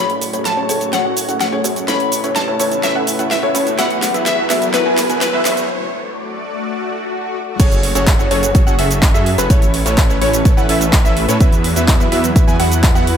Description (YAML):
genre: EDM, festival progressive house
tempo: 126 BPM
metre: 4/4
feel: straight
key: F# minor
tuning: A4 = 441 Hz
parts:
  - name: glassy wavetable pluck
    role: melody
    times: 0.0-5.7 s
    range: B4 to B5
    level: -20 LUFS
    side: left 3 dB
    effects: chorus, ping-pong delay
  - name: lush unison pad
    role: sustained chords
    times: 0.0-13.2 s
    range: F#3 to D5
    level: -24 LUFS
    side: equal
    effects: chorus, phaser, sidechain pumping
  - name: warm baby grand piano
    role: arpeggios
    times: 0.0-13.2 s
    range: B4 to G#5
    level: -22 LUFS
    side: equal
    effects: sidechain pumping, low-pass filter, ping-pong delay
  - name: supersaw stab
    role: riff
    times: 0.0-13.2 s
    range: B3 to G#5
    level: -21 LUFS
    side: right 1 dB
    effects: sidechain pumping, low-pass filter, ping-pong delay
  - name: wide detuned saw bass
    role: bass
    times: 0.0-13.2 s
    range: F#1 to A2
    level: -21 LUFS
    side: equal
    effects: chorus, sidechain pumping, high-pass filter
  - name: riser and swell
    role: sound effects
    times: 1.7-7.6 s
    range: none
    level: -27 LUFS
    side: equal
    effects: none
  - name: big-room dance drum kit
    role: drums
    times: 0.1-13.2 s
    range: crash cymbal, handclaps, hi-hat, shaker, snare drum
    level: -21 LUFS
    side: right 1 dB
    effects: high-pass filter on hats, high-pass filter on snare, high-pass filter on perc, high-pass filter on cymbals, high-pass filter on room
  - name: electronic kick drum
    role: drums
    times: 7.6-12.9 s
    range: none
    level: -12 LUFS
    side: equal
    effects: none
room: light reverb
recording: high-pass filter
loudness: -13 LUFS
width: side -8 dB against mid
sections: 0.0-7.6 A section; 7.6-13.2 B section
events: build-up 0.0-7.6; drum fill 0.0-5.7; filter sweep on supersaw synth 0.0-7.6; filter sweep on grand piano 0.0-7.6; filter sweep 0.0-7.6; riser 1.7-5.7; break 5.7-7.6; swell 6.6-7.6; drop 7.6-13.2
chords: 0.0 F#madd9; 1.9 Aadd9; 3.8 Esus2; 5.7 D; 7.6 F#madd9; 9.5 Aadd9; 11.4 Esus2